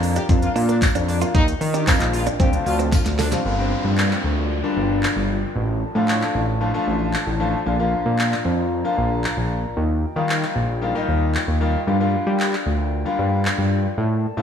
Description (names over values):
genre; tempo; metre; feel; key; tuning
dance-pop; 114 BPM; 4/4; straight; G minor; A4 = 441 Hz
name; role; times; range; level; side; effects
clear concert grand piano; accompaniment; 0.0-14.4 s; D3 to F4; -25 LUFS; left 3 dB; sidechain pumping
glass harmonica; sustained chords; 0.0-14.4 s; F4 to Bb5; -31 LUFS; left 2 dB; sidechain pumping
direct-recorded clean electric guitar; riff; 0.0-3.4 s; G3 to F4; -28 LUFS; right 7 dB; analog chorus
fat analog bass; bass; 0.0-14.4 s; G1 to G3; -21 LUFS; equal; sidechain pumping
pop drum kit; drums; 0.0-13.6 s; handclaps, hi-hat, kick drum, shaker, snare drum; -23 LUFS; equal; none
mellow horn section; melody; 0.2-3.3 s; D4 to G4; -29 LUFS; left 1 dB; digital delay
tambourine; percussion; 0.8-3.0 s; none; -38 LUFS; left 3 dB; none
downlifter; sound effects; 3.5-7.7 s; none; -32 LUFS; equal; none
room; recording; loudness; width
moderate lush hall reverb, RT60 2.2 s; rough home demo mix; -18 LUFS; side -8 dB against mid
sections
0.0-3.5 A section; 3.5-14.4 B section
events
drop 0.0-3.5; drum fill 2.9-3.5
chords
0.0 Bb; 1.3 Ebadd9; 2.4 Dm7; 3.5 Gm7; 5.6 Dm/A; 7.7 Bb; 9.8 Ebadd9; 11.9 Gm7